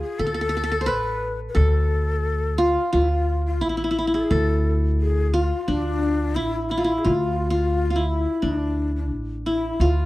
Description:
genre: Arabic maqam ensemble.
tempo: 88 BPM.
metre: 4/4.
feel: straight.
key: D maqam nikriz.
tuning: A4 = 440 Hz.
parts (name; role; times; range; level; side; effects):
qanun; melody; 0.0-10.1 s; D4 to C5; -24 LUFS; equal; none.
breathy ney; second line; 0.0-10.1 s; D4 to B4; -27 LUFS; left 5 dB; none.
upright bass; bass; 0.2-10.1 s; A1 to D2; -23 LUFS; equal; none.
room: little or no reverb.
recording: dry, close 1970s-style studio recording.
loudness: -20 LUFS.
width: side -17 dB against mid.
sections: 0.0-10.1 A section.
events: none.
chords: none.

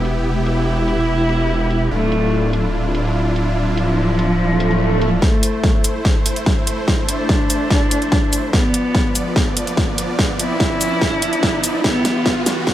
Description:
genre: heavy wobble dubstep.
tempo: 145 BPM.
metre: 4/4.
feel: half-time.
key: A minor.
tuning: A4 = 440 Hz.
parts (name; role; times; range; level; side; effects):
supersaw chords; sustained chords; 0.0-12.7 s; E3 to D5; -23 LUFS; equal; sidechain pumping.
wobble bass; bass; 0.0-5.2 s; D1 to E1; -19 LUFS; equal; chorus, overdrive.
dubstep drum kit; drums; 0.1-12.7 s; hi-hat, shaker, snare drum; -20 LUFS; equal; high-pass filter on hats, low-pass filter on hats, high-pass filter on snare, low-pass filter on snare, high-pass filter on perc, low-pass filter on perc.
rich cello; melody; 0.5-12.6 s; F3 to E4; -21 LUFS; equal; low-pass filter, digital delay.
swell and riser; sound effects; 4.5-12.7 s; none; -26 LUFS; right 1 dB; none.
electronic kick drum; drums; 5.2-12.7 s; none; -19 LUFS; equal; none.
room: light reverb.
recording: high-pass filter.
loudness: -15 LUFS.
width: side -12 dB against mid.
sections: 0.0-5.2 A section; 5.2-12.7 B section.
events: swell 4.5-5.2; build-up 5.2-12.7; drum fill 5.2-12.7; riser 5.2-12.7; filter sweep on cello 5.2-12.7; filter sweep 5.2-12.7.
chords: 0.0 Em; 1.9 Dmadd9; 5.2 Am; 8.5 Bdim; 11.8 Em.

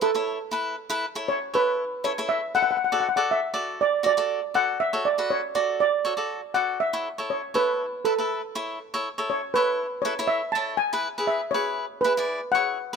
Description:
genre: calypso.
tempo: 120 BPM.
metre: 4/4.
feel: straight.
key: A major.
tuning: A4 = 440 Hz.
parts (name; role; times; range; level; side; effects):
steel pan; melody; 0.0-13.0 s; A4 to A5; -24 LUFS; right 1 dB; none.
cavaquinho; accompaniment; 0.0-13.0 s; E4 to D5; -29 LUFS; left 1 dB; none.
room: light reverb.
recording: minimal, uncompressed stereo recording.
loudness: -23 LUFS.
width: side -6 dB against mid.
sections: 0.0-13.0 A section.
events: none.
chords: 0.0 Aadd9; 2.8 D; 6.8 Aadd9; 10.8 E.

